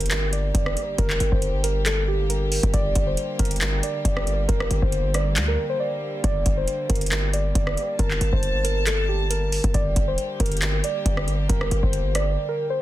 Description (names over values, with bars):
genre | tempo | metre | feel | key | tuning
hip hop, trap | 137 BPM | 4/4 | half-time | G minor | A4 = 442 Hz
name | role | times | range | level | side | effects
muted felt-like synth keys | melody | 0.0-12.8 s | G4 to D5 | -27 LUFS | right 1 dB | chorus, ping-pong delay
dark symphonic string section | sustained chords | 0.0-12.8 s | D3 to A5 | -32 LUFS | equal | none
hard-hitting 808-style bass | bass | 0.0-12.4 s | G1 to D2 | -24 LUFS | equal | none
booming analog drum machine | drums | 0.0-12.3 s | handclaps, hi-hat, kick drum, rim click | -24 LUFS | equal | none
impact | sound effects | 0.0-1.0 s | none | barely audible | none | none
room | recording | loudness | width
digital ambience | dense, heavily limited modern master, faint mains hum | -20 LUFS | side -14 dB against mid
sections
0.0-12.8 A section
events
impact 0.0-1.0; break 5.8-6.2, 12.4-12.8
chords
0.0 Gm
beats
0.11 0.55 | 0.98 1.42 1.86 2.30 | 2.74 3.17 3.61 4.05 | 4.49 4.93 5.36 5.80 | 6.24 6.68 7.12 7.55 | 7.99 8.43 8.87 9.30 | 9.74 10.18 10.62 11.06 | 11.49 11.93 12.37 12.81